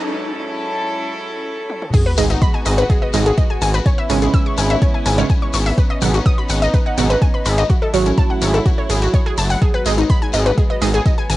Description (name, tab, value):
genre	melodic techno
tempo	125 BPM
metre	4/4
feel	straight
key	G# phrygian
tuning	A4 = 440 Hz
part	rich chamber string section	sustained chords	0.0-11.4 s	G#2 to A4	-25 LUFS	equal	sidechain pumping, cassette tape
part	punchy analog drum machine	drums	1.7-11.4 s	crash cymbal, hi-hat, toms	-29 LUFS	equal	cassette tape
part	analog pluck	arpeggios	1.9-11.4 s	C#4 to E6	-21 LUFS	left 1 dB	chorus, cassette tape, sidechain pumping, analog delay
part	electronic kick drum	drums	1.9-11.2 s	none	-16 LUFS	equal	overdrive, cassette tape
part	shekere	percussion	1.9-11.4 s	none	-28 LUFS	left 12 dB	none
part	sub drop	sound effects	1.9-3.9 s	none	-25 LUFS	equal	none
part	synth brass stab	stabs	2.2-10.9 s	B2 to G#4	-22 LUFS	right 6 dB	chorus, cassette tape, sidechain pumping, analog delay
part	gritty driven synth bass	bass	2.2-11.4 s	F#1 to G#1	-17 LUFS	equal	sidechain pumping
room	light reverb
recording	home recording on cassette, high-pass filter, nothing above 10.9 kHz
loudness	-14 LUFS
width	side -16 dB against mid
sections	0.0-1.9 A section; 1.9-11.4 B section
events	build-up 0.0-1.9; break 0.0-1.9; drum fill 1.7; drop 1.9-11.4; impact 1.9-3.9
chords	0.0 F#m7/G#; 1.9 G#m7; 3.9 C#m7/G#; 5.8 Badd9/G#; 7.7 F#m7/G#; 9.6 G#m7